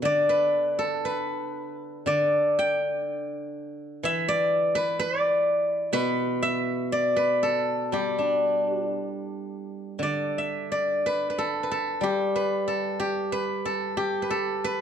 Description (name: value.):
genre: chinese traditional, Chinese solo plucked strings.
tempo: 56-64 BPM.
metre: 2/4.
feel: rubato.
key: G gong mode.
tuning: A4 = 441 Hz.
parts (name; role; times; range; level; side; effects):
steel-string zither; solo; 0.0-14.8 s; B2 to G5; -24 LUFS; equal; none.
room: light reverb.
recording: dark, warm production.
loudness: -23 LUFS.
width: side -8 dB against mid.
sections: 0.0-10.0 A section; 10.0-14.8 B section.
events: none.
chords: none.